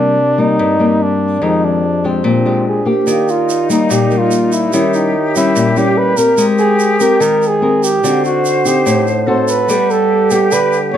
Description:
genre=bossa nova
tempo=145 BPM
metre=4/4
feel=straight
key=C minor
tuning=A4 = 440 Hz
part: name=mellow flugelhorn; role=melody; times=0.0-11.0 s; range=C4 to Db5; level=-15 LUFS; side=right 2 dB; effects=none
part: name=nylon-string guitar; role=accompaniment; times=0.0-11.0 s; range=F2 to Bb4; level=-15 LUFS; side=left 3 dB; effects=none
part: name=vibraphone with medium mallets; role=accompaniment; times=0.0-11.0 s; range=F3 to G5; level=-20 LUFS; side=right 1 dB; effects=none
part: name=concert flute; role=second line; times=3.1-11.0 s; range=Eb4 to C5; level=-20 LUFS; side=left 3 dB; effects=none
part: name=tube shaker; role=percussion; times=3.1-10.9 s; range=none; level=-25 LUFS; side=right 7 dB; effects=none
room=light reverb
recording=none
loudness=-11 LUFS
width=side -10 dB against mid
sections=0.0-3.1 A section; 3.1-11.0 B section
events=none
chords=0.0 Cm7; 1.4 Fm7; 2.2 Bb13; 3.1 Ebmaj7; 4.7 Eb7b9; 6.4 Abmaj9; 8.0 D7b9; 9.7 Gmaj9

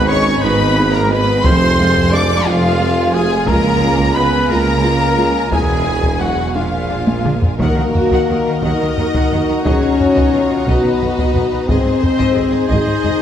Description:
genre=cinematic, epic orchestral film score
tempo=59 BPM (dotted quarters)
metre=6/8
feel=straight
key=Eb minor from 7.6 s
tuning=A4 = 441 Hz
part: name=dark studio violin section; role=melody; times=0.0-13.1 s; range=D#5 to D6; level=-22 LUFS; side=left 3 dB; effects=none
part: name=warm symphonic violin section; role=second line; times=0.0-13.2 s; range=F4 to Eb5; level=-24 LUFS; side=left 4 dB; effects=none
part: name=dark trombone section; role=sustained chords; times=0.0-13.2 s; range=Eb3 to D4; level=-24 LUFS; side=right 2 dB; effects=none
part: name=rich studio string section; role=sustained chords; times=0.0-13.2 s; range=G#3 to Bb5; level=-26 LUFS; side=left 1 dB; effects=none
part: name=dark trumpet section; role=stabs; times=0.0-13.2 s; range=E#4 to D5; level=-22 LUFS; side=right 1 dB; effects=none
part: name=rich symphonic cello section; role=bass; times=0.0-13.2 s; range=C#2 to Eb3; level=-23 LUFS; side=right 2 dB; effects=none
part: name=rich symphonic double bass section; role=bass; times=0.0-13.1 s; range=E1 to Eb2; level=-22 LUFS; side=right 2 dB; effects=none
part: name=warm tuba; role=bass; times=0.0-13.1 s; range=E1 to Eb2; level=-22 LUFS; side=right 3 dB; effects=none
part: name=timpani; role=percussion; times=0.0-0.4, 7.6-8.6 s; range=G#2 to Eb3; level=-27 LUFS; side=right 1 dB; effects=none
part: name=rich symphonic viola section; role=accompaniment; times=0.1-13.2 s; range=G#3 to C5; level=-23 LUFS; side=equal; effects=none
part: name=mellow French horn section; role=sustained chords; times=0.1-13.2 s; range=G#3 to E#4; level=-18 LUFS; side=left 4 dB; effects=none
part: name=taiko ensemble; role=drums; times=1.4-13.2 s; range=none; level=-19 LUFS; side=equal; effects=none
room=wet scoring stage reverb, RT60 1.9 s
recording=none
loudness=-12 LUFS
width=side -9 dB against mid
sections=0.0-7.6 A section; 7.6-13.2 B section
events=drum fill 7.1-7.6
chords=0.0 G#m; 1.5 Fm; 3.5 C#; 5.5 E; 6.6 A#7; 7.6 Ebm; 9.7 B; 11.7 Ab

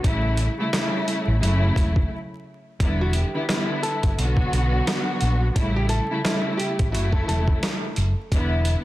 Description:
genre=hip hop, boom-bap hip-hop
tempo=87 BPM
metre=4/4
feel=swing 57% on 16ths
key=unclear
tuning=A4 = 440 Hz
part: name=warm symphonic string section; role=accompaniment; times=0.0-8.8 s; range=C#3 to F#4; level=-25 LUFS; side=equal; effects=cassette tape, high-pass filter, low-pass filter
part: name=hollow-body short-scale fingered electric bass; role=bass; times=0.0-8.7 s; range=E1 to B1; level=-22 LUFS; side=equal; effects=none
part: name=boom bap sampler-style drum kit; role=drums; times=0.0-8.8 s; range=hi-hat, kick drum, snare drum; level=-24 LUFS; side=equal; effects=none
part: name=nylon-string guitar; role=melody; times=3.0-8.3 s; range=F#4 to A4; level=-30 LUFS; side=equal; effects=high-pass filter, low-pass filter
room=little or no reverb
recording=dense, heavily limited modern master, vinyl crackle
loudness=-20 LUFS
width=side -16 dB against mid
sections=0.0-2.8 A section; 2.8-8.8 B section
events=break 2.1-2.8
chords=0.0 A7; 1.4 F#m7; 2.8 Em7; 4.2 Bm; 5.6 A7; 6.9 F#m7; 8.3 Em7

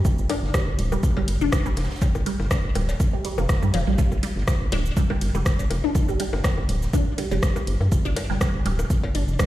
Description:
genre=minimal techno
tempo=122 BPM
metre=4/4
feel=swing 54% on 16ths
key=unclear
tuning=A4 = 438 Hz
part: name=electronic kick drum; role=drums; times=0.0-9.5 s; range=none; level=-22 LUFS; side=equal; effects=overdrive, small room ambience
part: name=punchy analog drum machine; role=drums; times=0.0-9.5 s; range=hi-hat, ride cymbal, rim click, shaker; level=-32 LUFS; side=equal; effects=overdrive, small room ambience
part: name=resonant blip pluck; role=riff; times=0.1-9.5 s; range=F3 to D4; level=-29 LUFS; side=right 1 dB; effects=phaser, analog chorus, sidechain pumping, digital delay
part: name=open jazz drum kit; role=drums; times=0.1-9.5 s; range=hi-hat, snare drum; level=-40 LUFS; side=right 2 dB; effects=high-pass filter on hats, small room ambience, high-pass filter on snare, high-pass filter on room
part: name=congas, cowbell and bongos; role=percussion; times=0.1-9.5 s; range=none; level=-33 LUFS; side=left 2 dB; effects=small room ambience, digital delay
part: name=rubbery square bass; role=bass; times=0.2-9.4 s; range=D1 to G2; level=-23 LUFS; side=equal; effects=sidechain pumping
room=light reverb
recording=played on a big sound system in a bare room, large studio reverb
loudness=-20 LUFS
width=side -15 dB against mid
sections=0.0-9.5 A section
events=none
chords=0.0 G5

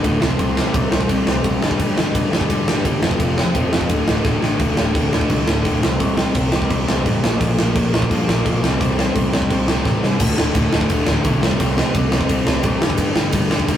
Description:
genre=punk rock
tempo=171 BPM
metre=4/4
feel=straight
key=unclear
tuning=A4 = 440 Hz
part: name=biting overdriven guitar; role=riff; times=0.0-13.8 s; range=D2 to C4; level=-26 LUFS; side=right 4 dB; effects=none
part: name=overdriven electric guitar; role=riff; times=0.0-13.8 s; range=D2 to C4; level=-21 LUFS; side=left 2 dB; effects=none
part: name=growling picked electric bass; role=bass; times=0.0-13.8 s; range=D1 to G2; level=-24 LUFS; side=equal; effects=overdrive
part: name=big rock drum kit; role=drums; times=0.0-13.8 s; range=crash cymbal, kick drum, ride cymbal, snare drum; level=-19 LUFS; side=equal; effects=none
room=moderate studio reverb, RT60 0.6 s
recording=rough rehearsal-room recording, warm saturation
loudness=-16 LUFS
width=side -10 dB against mid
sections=0.0-4.6 A section; 4.6-10.2 B section; 10.2-13.8 A section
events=drum fill 4.3-4.6, 9.9-10.2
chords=0.2 C5; 1.6 G5; 3.0 F5; 3.9 D5; 5.8 C5; 7.2 Bb5; 8.6 C5; 10.2 D5; 11.4 C5; 12.8 G5

